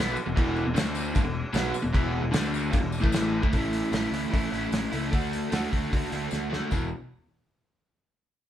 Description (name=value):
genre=garage rock duo or trio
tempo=150 BPM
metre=4/4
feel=straight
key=unclear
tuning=A4 = 439 Hz
part: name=overdriven electric guitar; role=riff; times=0.0-6.9 s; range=E2 to F#4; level=-28 LUFS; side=equal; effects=none
part: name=fuzz picked electric bass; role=bass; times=0.0-6.9 s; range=E1 to D2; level=-33 LUFS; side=equal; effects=overdrive
part: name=tambourine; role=percussion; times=0.2-6.9 s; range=none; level=-44 LUFS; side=left 7 dB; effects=none
part: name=cloth-damped thuddy drum kit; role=drums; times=0.4-6.8 s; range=crash cymbal, hi-hat, kick drum, snare drum, splash cymbal, toms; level=-28 LUFS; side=equal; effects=none
room=light reverb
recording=band playing live in one room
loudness=-24 LUFS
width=side -11 dB against mid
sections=0.0-3.5 A section; 3.5-6.7 B section; 6.7-8.3 C section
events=drum fill 6.3-6.7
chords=0.0 E5; 0.8 D5; 1.1 E5; 2.3 D5; 2.7 E5; 3.0 A5; 3.4 D5; 3.5 A; 5.1 D; 6.7 E5